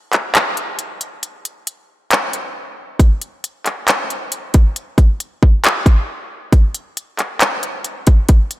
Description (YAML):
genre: R&B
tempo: 68 BPM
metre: 4/4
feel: straight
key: none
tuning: none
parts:
  - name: trap drum kit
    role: drums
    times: 0.1-8.6 s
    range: handclaps, hi-hat, kick drum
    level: -14 LUFS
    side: equal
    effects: none
room: light reverb, digital ambience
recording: none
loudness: -14 LUFS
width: side -17 dB against mid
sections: 0.0-8.6 A section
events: break 0.0-3.0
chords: none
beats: 0.35 1.23 2.11 | 3.00 3.88 4.76 5.64 | 6.53 7.41 8.29